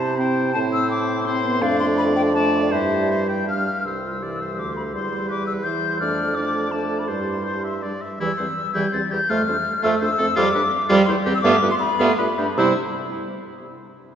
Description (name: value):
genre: quick classical-period movement for wind quintet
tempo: 151-170 BPM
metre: 3/4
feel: rubato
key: C major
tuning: A4 = 439 Hz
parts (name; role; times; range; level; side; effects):
- hollow concert flute; melody; 0.0-12.8 s; D5 to A6; -24 LUFS; left 3 dB; none
- clear oboe; second line; 0.0-12.7 s; E4 to G5; -28 LUFS; left 1 dB; none
- clear clarinet; accompaniment; 0.0-12.7 s; E3 to G4; -26 LUFS; right 4 dB; none
- mellow French horn; accompaniment; 0.0-12.7 s; E3 to C4; -25 LUFS; equal; none
- mellow bassoon; bass; 0.0-12.7 s; C2 to C3; -26 LUFS; right 2 dB; none
room: wet church reverb, RT60 3.6 s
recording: recorded in a church or concert hall, nothing above 8.0 kHz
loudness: -19 LUFS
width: side -9 dB against mid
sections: 0.0-3.9 A section; 3.9-12.6 B section; 12.6-13.7 C section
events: none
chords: 0.0 C; 0.5 Am; 1.6 Dm/F; 2.7 C/G; 3.5 G5; 3.9 C; 4.9 C/E; 6.0 Dm/F; 7.1 C/G; 7.8 G5; 8.2 C/E; 9.3 Dm/F; 10.4 G7(no3)/F; 11.1 C/E; 11.4 G9; 12.6 C